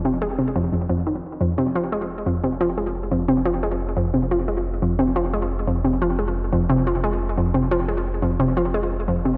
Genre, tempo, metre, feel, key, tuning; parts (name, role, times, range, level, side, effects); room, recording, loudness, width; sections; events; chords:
ambient, sequencer-driven space music; 88 BPM; 4/4; straight; F minor; A4 = 441 Hz
analog pluck; riff; 0.0-9.4 s; F2 to Ab3; -23 LUFS; equal; chorus, analog delay
warm sub bass; bass; 0.0-9.4 s; F1; -30 LUFS; equal
moderate plate reverb, RT60 3.0 s; dark, warm production; -22 LUFS; mono
0.0-9.4 A section
0.0 Fm